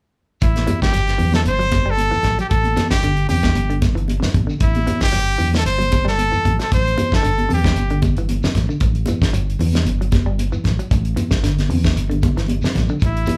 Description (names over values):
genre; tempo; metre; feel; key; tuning
afrobeat; 114 BPM; 4/4; swing 54% on 16ths; A dorian; A4 = 440 Hz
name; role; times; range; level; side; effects
brilliant trumpet; melody; 0.4-8.0, 13.1-13.4 s; E4 to C5; -23 LUFS; equal; none
fingered electric bass; bass; 0.4-13.2 s; G1 to E2; -23 LUFS; equal; none
damped 70s drum kit; drums; 0.4-13.4 s; hi-hat, kick drum, snare drum; -23 LUFS; equal; none
shekere; percussion; 0.4-13.4 s; none; -29 LUFS; equal; none
congas; percussion; 0.6-13.4 s; none; -28 LUFS; equal; none
semi-hollow electric guitar; arpeggios; 0.7-13.4 s; C3 to G3; -29 LUFS; equal; none
room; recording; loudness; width
light reverb; band playing live in one room; -18 LUFS; mono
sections
0.4-13.4 A section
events
none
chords
0.4 A7(no3)